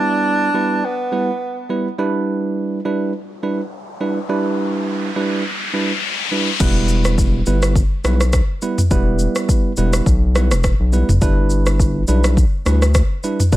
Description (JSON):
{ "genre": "afrobeats", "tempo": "104 BPM", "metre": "4/4", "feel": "swing 55% on 16ths", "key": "E minor", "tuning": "A4 = 440 Hz", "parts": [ { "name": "mellow tenor saxophone", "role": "melody", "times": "0.0-1.7 s", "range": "B3 to D4", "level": "-19 LUFS", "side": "right 1 dB", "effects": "digital delay" }, { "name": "bell-like tine electric piano", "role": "accompaniment", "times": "0.0-13.6 s", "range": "G3 to B4", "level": "-20 LUFS", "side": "right 3 dB", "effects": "none" }, { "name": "riser", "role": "sound effects", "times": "3.2-6.6 s", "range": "none", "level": "-25 LUFS", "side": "left 4 dB", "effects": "none" }, { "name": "round analog bass", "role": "bass", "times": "6.6-13.6 s", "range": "E1 to D2", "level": "-16 LUFS", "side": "equal", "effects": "none" }, { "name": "afro-pop drum kit", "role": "drums", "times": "6.6-13.6 s", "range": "crash cymbal, kick drum, rim click, shaker, toms", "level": "-17 LUFS", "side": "equal", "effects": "overdrive" } ], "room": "little or no reverb", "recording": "none", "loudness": "-15 LUFS", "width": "side -15 dB against mid", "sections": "0.0-6.6 A section; 6.6-13.6 B section", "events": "riser 3.2-6.6", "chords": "0.0 Em; 2.0 G6; 6.6 Em; 11.2 G6" }